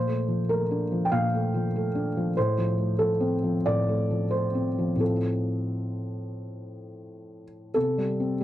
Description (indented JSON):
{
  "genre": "neoclassical minimalist piano",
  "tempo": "85-97 BPM",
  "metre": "4/4",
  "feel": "rubato",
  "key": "F major",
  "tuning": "A4 = 438 Hz",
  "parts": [
    { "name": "felt-muted upright piano", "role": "solo", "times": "0.0-8.4 s", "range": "A2 to G5", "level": "-24 LUFS", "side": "equal", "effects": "none" }
  ],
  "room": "light reverb",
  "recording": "dry, close 1970s-style studio recording",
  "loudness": "-24 LUFS",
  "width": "side -13 dB against mid",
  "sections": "0.0-7.8 A section",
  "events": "none",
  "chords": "0.0 Bbmaj7; 2.4 F/A; 7.8 C5"
}